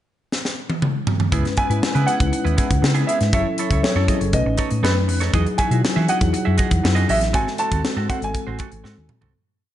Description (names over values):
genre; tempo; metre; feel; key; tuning
polished 1980s jazz-funk pop; 120 BPM; 4/4; straight; C# minor; A4 = 441 Hz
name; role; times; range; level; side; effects
crisp fusion drum kit; drums; 0.3-9.3 s; hi-hat, kick drum, snare drum, toms; -22 LUFS; equal; gated reverb
mellow tine electric piano; accompaniment; 1.3-9.4 s; F#3 to B4; -25 LUFS; left 3 dB; fast stereo tremolo, analog chorus
semi-hollow electric guitar; riff; 1.3-9.3 s; B3 to E5; -28 LUFS; right 8 dB; lush chorus
hollow-body short-scale fingered electric bass; bass; 1.3-9.3 s; F#1 to E3; -21 LUFS; equal; none
warm baby grand piano; melody; 1.6-9.1 s; B4 to A5; -25 LUFS; right 1 dB; none
room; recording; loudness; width
light reverb, small room ambience; nothing above 11.0 kHz; -17 LUFS; side -12 dB against mid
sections
0.0-1.3 pickup bar; 1.3-9.4 verse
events
drum fill 0.3-1.3, 8.8-9.4; fade-out 7.3-9.4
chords
0.0 N.C.; 1.3 C#m7; 3.3 F#m7; 4.3 B9; 5.3 Emaj9; 7.3 G#7b9